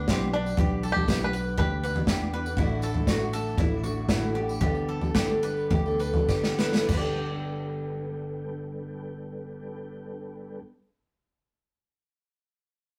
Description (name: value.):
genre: indie folk with a building arrangement.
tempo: 97-121 BPM.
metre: 4/4.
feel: straight.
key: G major.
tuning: A4 = 440 Hz.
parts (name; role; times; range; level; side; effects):
bluegrass banjo; melody; 0.0-2.3 s; C4 to B4; -33 LUFS; equal; none.
picked steel-string acoustic guitar; accompaniment; 0.0-10.7 s; A2 to B4; -34 LUFS; equal; none.
mellow tonewheel organ; sustained chords; 0.0-10.6 s; G3 to D6; -44 LUFS; equal; none.
bowl-back mandolin; arpeggios; 0.0-10.7 s; E4 to G5; -38 LUFS; equal; none.
fingered electric bass; bass; 0.0-10.6 s; G1 to E2; -36 LUFS; equal; none.
unplugged drum kit; drums; 0.1-7.0 s; crash cymbal, kick drum, snare drum, toms; -29 LUFS; equal; none.
tambourine; percussion; 0.1-7.2 s; none; -49 LUFS; equal; none.
room: moderate studio reverb, RT60 0.5 s.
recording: rough rehearsal-room recording.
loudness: -27 LUFS.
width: mono.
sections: 0.0-6.9 A section; 6.9-11.9 B section.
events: slowing down 2.6-6.9; drum fill 6.3-6.9.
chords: 0.0 G/B; 2.6 Dadd9/A; 4.6 Gadd9.